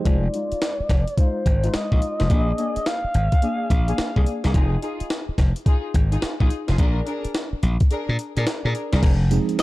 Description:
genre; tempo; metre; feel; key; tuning
R&B, new jack swing; 107 BPM; 4/4; swing 64% on 16ths; F dorian; A4 = 439 Hz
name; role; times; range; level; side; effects
mellow tine electric piano; accompaniment; 0.0-0.2, 9.3-9.6 s; F3 to C5; -24 LUFS; right 6 dB; none
breathy alto saxophone; melody; 0.1-4.3, 9.6 s; C5 to F5; -27 LUFS; equal; low-pass filter
warm studio string section; stabs; 0.1-9.0 s; Ab3 to Bb4; -29 LUFS; left 2 dB; low-pass filter
glassy slap bass; bass; 0.1-9.4 s; F1 to Bb2; -21 LUFS; equal; none
breakbeat sampler-style drum kit; drums; 0.1-9.6 s; crash cymbal, hi-hat, kick drum, snare drum, tambourine; -20 LUFS; equal; none
room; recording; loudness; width
little or no reverb; dark, warm production; -19 LUFS; side -18 dB against mid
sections
0.1-9.0 A section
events
filter sweep 0.1-9.0; kick muted 7.9-9.0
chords
0.1 Fm7; 2.3 Bb7; 4.5 Fm7; 6.8 Bb7; 9.0 Fm7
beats
| 0.06 0.62 1.18 1.74 | 2.30 2.86 3.42 3.98 | 4.54 5.10 5.66 6.22 | 6.79 7.35 7.91 8.47 | 9.03 9.59

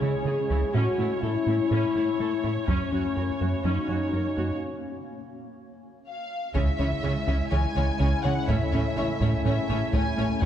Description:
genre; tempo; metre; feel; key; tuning
cinematic, hybrid orchestral and electronic film score; 124 BPM; 4/4; straight; unclear; A4 = 439 Hz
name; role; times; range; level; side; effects
rich symphonic viola section; accompaniment; 0.0-10.5 s; G#3 to C#5; -35 LUFS; right 2 dB; none
granular cloud pad; sustained chords; 0.0-10.5 s; G#3 to C#5; -36 LUFS; left 2 dB; built-in reverb
mellow French horn section; sustained chords; 0.0-10.5 s; C#4 to G#4; -29 LUFS; left 4 dB; none
tight sequenced synth; arpeggios; 0.0-10.5 s; C#3 to A4; -37 LUFS; right 1 dB; none
round analog bass; riff; 0.0-10.5 s; C#2 to A3; -29 LUFS; right 1 dB; none
warm symphonic cello section; bass; 0.0-10.5 s; F#2 to C#3; -33 LUFS; right 2 dB; none
taiko ensemble; drums; 2.7-3.6, 6.5-10.5 s; none; -30 LUFS; equal; none
warm symphonic violin section; melody; 6.1-10.5 s; E5 to G#5; -32 LUFS; left 3 dB; none
rich studio violin section; second line; 6.5-10.5 s; C#4 to C#5; -35 LUFS; left 4 dB; none
warm trombone section; sustained chords; 6.5-10.5 s; C#3 to A#3; -35 LUFS; right 4 dB; none
rich studio double bass section; bass; 6.6-10.5 s; A1 to C#2; -33 LUFS; right 3 dB; none
room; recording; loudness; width
moderate scoring stage reverb, RT60 2.1 s; dark, warm production; -23 LUFS; side -10 dB against mid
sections
0.0-6.5 A section; 6.5-10.5 B section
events
break 4.6-6.5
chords
0.0 C#m; 0.7 A; 2.7 F#; 4.6 N.C.; 6.5 C#m; 8.5 A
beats
0.26 | 0.74 1.23 1.71 2.19 | 2.68 3.16 3.65 4.13 | 4.61 5.10 5.58 6.07 | 6.55 7.03 7.52 8.00 | 8.48 8.97 9.45 9.94 | 10.42

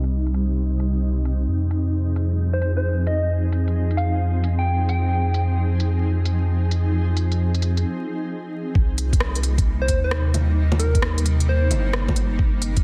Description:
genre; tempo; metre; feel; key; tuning
future garage; 132 BPM; 4/4; swing 66% on 16ths; C minor; A4 = 440 Hz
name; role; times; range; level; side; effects
granular cloud pad; sustained chords; 0.0-12.8 s; C3 to Ab4; -30 LUFS; equal; built-in reverb, sidechain pumping
soft dub sub bass; bass; 0.0-12.8 s; G1 to F2; -23 LUFS; equal; sidechain pumping
organic electronic drum kit; drums; 0.0-12.8 s; bongos, hi-hat, rim click; -31 LUFS; equal; low-pass filter on hats, soft clipping on snare, low-pass filter on snare, low-pass filter on perc, low-pass filter on room
soft struck synth lead; melody; 2.5-5.5, 9.8-12.1 s; Bb4 to G5; -30 LUFS; equal; chorus, tremolo, digital delay
electronic kick drum; drums; 8.8-12.8 s; none; -22 LUFS; equal; none
room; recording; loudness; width
light reverb, digital ambience; dense, heavily limited modern master, vinyl crackle, low-pass filter; -21 LUFS; mono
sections
0.0-8.8 A section; 8.8-12.8 B section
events
filter sweep on ambient pad 0.0-8.8; filter sweep 0.0-8.8; break 7.8-8.8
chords
0.0 Cm; 1.5 Fm7; 8.8 Cm7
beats
0.12 0.57 1.03 | 1.48 1.94 2.39 2.85 | 3.30 3.75 4.21 4.66 | 5.12 5.57 6.03 6.48 | 6.94 7.39 7.84 8.30 | 8.76 9.21 9.66 10.12 | 10.57 11.03 11.48 11.94 | 12.39

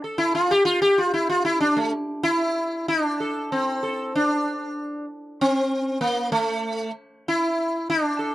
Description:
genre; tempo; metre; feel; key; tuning
indian classical; 96 BPM; 4/4; straight; A raga bhairavi; A4 = 439 Hz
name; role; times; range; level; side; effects
sitar; solo; 0.0-8.3 s; A3 to A4; -21 LUFS; equal; none
room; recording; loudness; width
little or no reverb; dry, close 1970s-style studio recording; -21 LUFS; side -14 dB against mid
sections
0.0-8.3 A section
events
none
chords
none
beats
0.36 0.99 | 1.62 2.25 2.88 3.50 | 4.13 4.76 5.39 6.01 | 6.64 7.27 7.89

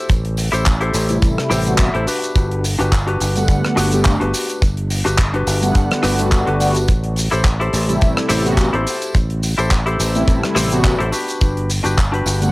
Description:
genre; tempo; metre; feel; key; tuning
nu-disco, nu disco; 106 BPM; 4/4; swing 55% on 16ths; A dorian; A4 = 440 Hz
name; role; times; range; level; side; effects
direct-recorded clean electric guitar; riff; 0.0-12.5 s; D4 to G5; -21 LUFS; left 1 dB; analog chorus, cassette tape
fingered electric bass; bass; 0.1-12.5 s; G1 to A1; -20 LUFS; equal; tube saturation
damped 70s drum kit; drums; 0.1-12.5 s; handclaps, hi-hat, rim click, shaker; -23 LUFS; equal; small room ambience, cassette tape
kick drum; drums; 0.1-12.1 s; none; -15 LUFS; equal; small room ambience, cassette tape
tambourine; percussion; 0.1-12.5 s; none; -32 LUFS; right 3 dB; none
mellow synth brass; accompaniment; 1.1-12.5 s; C3 to F#5; -20 LUFS; equal; chorus, phaser, cassette tape, tape echo
room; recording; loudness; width
little or no reverb; home recording on cassette; -14 LUFS; side -21 dB against mid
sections
0.0-12.5 A section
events
clean electric guitar fill 1.2-2.4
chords
0.0 Am7; 2.1 Gmaj7; 6.9 Am7; 11.1 Gmaj7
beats
| 0.09 0.66 1.22 1.79 | 2.36 2.92 3.49 4.05 | 4.62 5.19 5.75 6.32 | 6.88 7.45 8.02 8.58 | 9.15 9.71 10.28 10.85 | 11.41 11.98

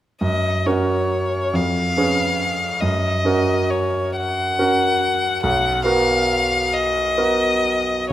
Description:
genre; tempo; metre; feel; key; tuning
classical, romantic duo for violin and grand piano; 46 BPM (dotted quarters); 6/8; uneven beats, rubato; F# major; A4 = 445 Hz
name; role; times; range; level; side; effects
clear violin; melody; 0.2-8.1 s; C#5 to F#5; -20 LUFS; left 2 dB; none
bright grand piano; accompaniment; 0.2-8.1 s; B1 to B4; -20 LUFS; right 2 dB; none
room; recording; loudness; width
wet recital hall reverb, RT60 1.6 s; none; -17 LUFS; side -12 dB against mid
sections
0.2-8.1 A section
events
none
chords
0.2 F#; 1.5 C#7/E#; 2.8 F#; 5.4 Bmaj7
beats
| 0.22 1.54 | 2.82 4.17 | 5.44 6.73 | 8.11

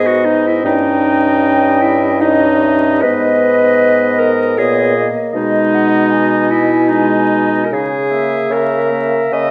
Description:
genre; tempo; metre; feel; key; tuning
classical, slow romantic movement for wind quintet; 76 BPM; 3/4; uneven beats, rubato; G# minor; A4 = 440 Hz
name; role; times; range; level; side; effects
mellow hollow silver concert flute; melody; 0.0-9.5 s; C#5 to G#5; -22 LUFS; equal; none
warm oboe; second line; 0.0-9.5 s; D#5 to E5; -23 LUFS; equal; none
clear clarinet; accompaniment; 0.0-9.5 s; D#4 to D#5; -17 LUFS; equal; none
warm French horn; accompaniment; 0.0-9.5 s; G#3 to C#4; -21 LUFS; equal; none
mellow bassoon; bass; 0.0-9.5 s; G2 to C#3; -20 LUFS; equal; none
room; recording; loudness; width
wet recital hall reverb, RT60 1.5 s; dark, warm production, vinyl crackle, nothing above 10.4 kHz; -13 LUFS; mono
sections
0.0-9.5 A section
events
none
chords
0.0 G#m; 0.6 D#7/G; 3.0 G#m; 5.3 G#m/B; 7.7 A#m7b5/C#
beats
| 0.64 1.42 2.20 | 3.03 3.82 4.58 | 5.34 6.11 6.88 | 7.71 8.50 9.32

